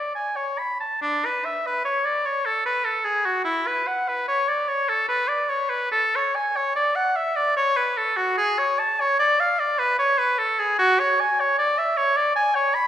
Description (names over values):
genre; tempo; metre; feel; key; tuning
classical, baroque-style fantasia for unaccompanied oboe; 74 BPM; 3/4; rubato; unclear; A4 = 440 Hz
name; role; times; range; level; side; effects
clear oboe; solo; 0.0-12.9 s; D4 to B5; -20 LUFS; equal; none
room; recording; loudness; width
wet recital hall reverb, RT60 1.7 s; recorded in a church or concert hall; -20 LUFS; side -10 dB against mid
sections
0.0-1.0 A section; 1.0-12.9 A section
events
none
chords
none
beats
0.15 | 1.04 1.86 2.67 | 3.46 4.27 5.08 | 5.91 6.75 7.56 | 8.37 9.18 9.97 | 10.78 11.58 12.37